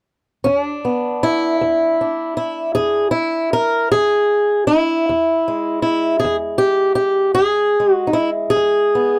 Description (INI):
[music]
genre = acoustic country blues, solo or duo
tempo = 52 BPM (dotted quarters)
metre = 12/8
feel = straight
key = E mixolydian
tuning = A4 = 439 Hz
[part]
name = fingerpicked swing-style acoustic guitar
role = solo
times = 0.4-9.2 s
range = E2 to A#4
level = -17 LUFS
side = equal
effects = none
[sound]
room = light reverb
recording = dry, close 1970s-style studio recording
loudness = -17 LUFS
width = mono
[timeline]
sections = 0.5-9.2 A section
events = none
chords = 0.5 E7